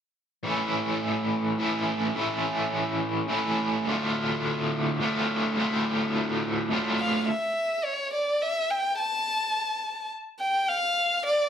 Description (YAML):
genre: rock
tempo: 106 BPM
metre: 3/4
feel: straight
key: D minor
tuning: A4 = 440 Hz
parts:
  - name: cranked stack guitar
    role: riff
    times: 0.4-7.3 s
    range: D2 to A4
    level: -25 LUFS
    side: equal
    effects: overdrive, tremolo
  - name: warm violin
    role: melody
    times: 7.0-11.5 s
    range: C#5 to A5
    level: -25 LUFS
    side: left 1 dB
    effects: slapback echo
room: wet large studio reverb, RT60 0.9 s, studio ambience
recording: none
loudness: -24 LUFS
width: side -8 dB against mid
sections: 0.4-7.3 A section; 7.3-11.5 B section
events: none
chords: 0.4 A; 3.9 Dm; 7.3 N.C.